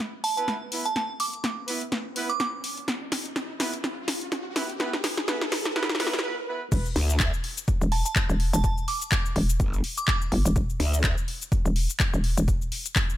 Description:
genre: bass house.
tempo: 125 BPM.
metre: 4/4.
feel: swing 57% on 16ths.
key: E minor.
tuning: A4 = 438 Hz.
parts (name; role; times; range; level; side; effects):
house drum kit; drums; 0.0-13.2 s; crash cymbal, handclaps, hi-hat, shaker, snare drum; -28 LUFS; left 1 dB; small room ambience.
riser; sound effects; 0.9-6.2 s; none; -38 LUFS; equal; none.
glassy synth bell; melody; 0.2-2.5, 7.9-10.2 s; A5 to D6; -30 LUFS; right 4 dB; chorus, tremolo, digital delay.
mellow horn section; stabs; 0.4-6.6 s; B3 to B4; -34 LUFS; right 3 dB; sidechain pumping, digital delay.
hollow knocking FM bass; bass; 6.7-12.7 s; E1 to G1; -24 LUFS; equal; overdrive, sidechain pumping.
electronic kick drum; drums; 6.7-13.1 s; none; -26 LUFS; equal; small room ambience.
growl bass; bass; 7.0-11.2 s; G1 to D2; -24 LUFS; equal; distortion, chorus, tube saturation, sidechain pumping.
room: light reverb.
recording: high-pass filter.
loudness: -24 LUFS.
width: side -14 dB against mid.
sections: 0.0-6.7 A section; 6.7-13.2 B section.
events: build-up 0.0-6.7; drum fill 0.0-6.2; riser 0.9-6.2; break 6.2-6.7; drop 6.7-13.2.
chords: 0.0 E5.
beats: 0.00 0.48 | 0.96 1.44 1.92 2.40 | 2.88 3.36 3.84 4.32 | 4.80 5.28 5.76 6.24 | 6.72 7.20 7.68 8.16 | 8.64 9.12 9.60 10.08 | 10.56 11.04 11.52 12.00 | 12.48 12.96.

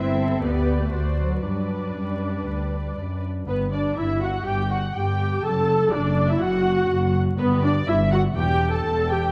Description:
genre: quick classical-period movement for string orchestra.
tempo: 122 BPM.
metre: 4/4.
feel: rubato.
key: G major.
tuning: A4 = 440 Hz.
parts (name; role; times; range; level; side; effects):
muted studio violin section; melody; 0.0-9.3 s; B4 to A5; -34 LUFS; equal; none.
muted studio violin section; second line; 0.0-9.3 s; A4 to A5; -34 LUFS; equal; none.
muted studio viola section; accompaniment; 0.0-9.3 s; B3 to A4; -28 LUFS; equal; none.
muted studio cello section; bass; 0.0-9.3 s; E2 to C4; -29 LUFS; equal; none.
muted studio double bass section; bass; 0.0-9.3 s; E1 to G2; -28 LUFS; equal; none.
room: moderate scoring stage reverb, RT60 1.6 s.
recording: dark, warm production, vinyl crackle.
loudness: -23 LUFS.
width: mono.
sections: 0.0-3.5 A section; 3.5-9.3 B section.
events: none.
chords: 0.4 G/D; 0.9 D7; 1.4 G; 3.5 Gmaj7(no3); 5.4 D/F#; 7.4 Em7/G; 8.4 Emadd11.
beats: 0.43 0.93 | 1.44 1.96 2.48 2.98 | 3.49 3.99 4.48 4.97 | 5.45 5.93 6.42 6.91 | 7.39 7.87 8.36 8.86.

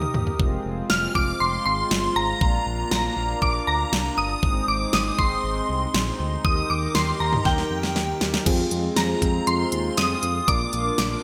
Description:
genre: synth-pop.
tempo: 119 BPM.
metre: 4/4.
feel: straight.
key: F dorian.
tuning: A4 = 440 Hz.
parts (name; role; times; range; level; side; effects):
shimmering bell with halo; melody; 0.0-11.2 s; G5 to F6; -27 LUFS; equal; ensemble chorus, delay.
chorused pulse-width pad; sustained chords; 0.0-11.2 s; Eb3 to Bb4; -32 LUFS; equal; none.
smooth gliding synth bass; bass; 0.0-11.2 s; F1 to F2; -31 LUFS; equal; none.
pop drum kit; drums; 0.0-11.1 s; crash cymbal, hi-hat, kick drum, snare drum, toms; -27 LUFS; equal; gated reverb.
FM electric piano with soft pad layer; accompaniment; 8.5-11.2 s; C4 to Bb4; -31 LUFS; equal; chorus, phaser.
room: wet lush hall reverb, RT60 1.9 s.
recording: bright 1980s-style digital production.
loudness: -23 LUFS.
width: mono.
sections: 0.0-8.5 A section; 8.5-11.2 B section.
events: drum fill 0.0-0.4, 7.5-8.5.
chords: 0.4 Fm; 2.4 Bb; 4.4 Ab; 6.4 Eb; 8.5 Fm; 10.5 Bb.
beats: | 0.40 0.90 1.40 1.91 | 2.41 2.92 3.42 3.92 | 4.43 4.93 5.44 5.94 | 6.45 6.95 7.46 7.96 | 8.46 8.97 9.47 9.98 | 10.48 10.98.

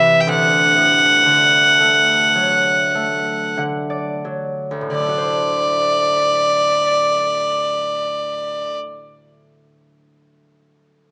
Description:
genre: celtic folk, Celtic slow air.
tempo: 42-63 BPM.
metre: 4/4.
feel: rubato.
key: D mixolydian.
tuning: A4 = 439 Hz.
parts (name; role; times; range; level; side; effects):
bright fiddle; melody; 0.0-8.8 s; D5 to G5; -16 LUFS; equal; none.
concert harp; accompaniment; 0.0-9.0 s; C2 to F#5; -26 LUFS; equal; none.
room: moderate spring reverb, RT60 1.8 s.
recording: small speaker sound.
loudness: -17 LUFS.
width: mono.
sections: 0.0-5.0 A section; 5.0-10.5 B section.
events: slowing down 0.0-5.0; harp fill 2.9-5.0.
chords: 0.3 D; 5.0 D7.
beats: | 0.27 1.27 2.36 3.58 | 4.95 6.35 7.71.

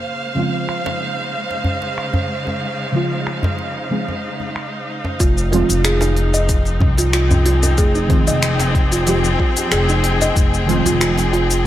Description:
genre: organic downtempo.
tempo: 93 BPM.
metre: 4/4.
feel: swing 54% on 16ths.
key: F minor.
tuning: A4 = 440 Hz.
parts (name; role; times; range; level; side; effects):
rich studio string section; sustained chords; 0.0-11.7 s; Db3 to G5; -22 LUFS; left 1 dB; sidechain pumping.
organic electronic drum kit; drums; 0.0-11.6 s; cabasa, finger snaps, hi-hat; -23 LUFS; left 1 dB; low-pass filter on perc, small room reverb, low-pass filter on snare, low-pass filter on hats.
deep mellow chord stab; accompaniment; 0.3-11.7 s; Db3 to Ab4; -22 LUFS; right 2 dB; chorus, sidechain pumping, tape echo.
djembe; percussion; 0.4-11.3 s; none; -23 LUFS; equal; none.
kalimba; arpeggios; 5.2-11.6 s; Eb4 to Eb5; -21 LUFS; right 2 dB; tape echo.
upright bass; bass; 5.2-11.7 s; F1 to C2; -18 LUFS; equal; tube saturation, sidechain pumping.
electronic kick drum; drums; 5.2-10.5 s; none; -17 LUFS; equal; small room reverb.
room: light reverb, small room reverb.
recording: none.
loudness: -15 LUFS.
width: side -12 dB against mid.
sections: 0.0-5.2 A section; 5.2-11.7 B section.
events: none.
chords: 0.0 Dbmaj7; 5.2 Fm7.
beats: | 0.04 0.68 1.33 1.97 | 2.62 3.26 3.91 4.55 | 5.20 5.84 6.49 7.13 | 7.78 8.43 9.07 9.71 | 10.36 11.01 11.65.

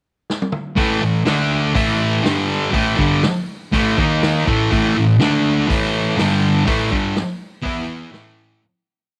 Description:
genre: garage rock duo or trio.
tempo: 122 BPM.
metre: 4/4.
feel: straight.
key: unclear.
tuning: A4 = 440 Hz.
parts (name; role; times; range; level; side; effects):
vintage drum kit; drums; 0.3-8.3 s; hi-hat, kick drum, snare drum, toms; -26 LUFS; equal; none.
thick fuzz guitar; riff; 0.8-8.6 s; G2 to E4; -18 LUFS; equal; distortion.
room: small room ambience.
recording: none.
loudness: -18 LUFS.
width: mono.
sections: 0.0-0.8 pickup bar; 0.8-8.6 verse.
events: drum fill 0.3-0.8; fade-out 6.7-8.6.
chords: 0.0 N.C.; 0.8 A5; 1.3 D5; 1.8 A5; 2.3 G5; 2.8 A5; 4.0 D#5; 4.5 A5; 5.2 D5; 5.7 A5; 6.2 G5; 6.7 A5; 7.7 E5; 8.1 A5.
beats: 0.30 | 0.79 1.28 1.77 2.26 | 2.75 3.24 3.73 4.23 | 4.72 5.21 5.70 6.19 | 6.68 7.17 7.66 8.14.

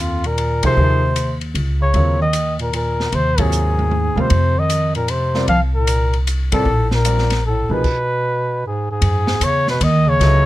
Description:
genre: modal jazz.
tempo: 153 BPM.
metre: 3/4.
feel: swing 65% on 8ths.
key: unclear.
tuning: A4 = 440 Hz.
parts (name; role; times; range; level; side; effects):
dark trumpet; melody; 0.0-10.5 s; F4 to F5; -20 LUFS; left 1 dB; none.
warm bass clarinet; second line; 0.0-10.5 s; F2 to F3; -22 LUFS; right 2 dB; none.
upright bass; bass; 0.0-10.5 s; Bb1 to C3; -18 LUFS; equal; none.
open jazz drum kit; drums; 0.2-10.3 s; crash cymbal, hi-hat, kick drum, ride cymbal, snare drum, toms; -25 LUFS; equal; none.
warm baby grand piano; accompaniment; 0.6-7.8, 10.2-10.4 s; C3 to F5; -24 LUFS; right 1 dB; none.
room: light reverb.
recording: none.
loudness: -15 LUFS.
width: side -15 dB against mid.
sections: 0.0-9.0 A section; 9.0-10.5 B section.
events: band accent 0.6, 3.3, 6.5; drum fill 3.5-4.3; stop 7.8-9.0.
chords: 0.0 Eb13sus4; 4.3 F13sus4; 7.8 N.C.; 9.0 F#9sus4.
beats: 0.38 | 0.77 1.16 1.56 | 1.95 2.34 2.73 | 3.13 3.52 3.91 | 4.30 4.70 5.09 | 5.48 5.88 6.27 | 6.66 7.06 7.45 | 7.84 8.24 8.63 | 9.02 9.42 9.81 | 10.20.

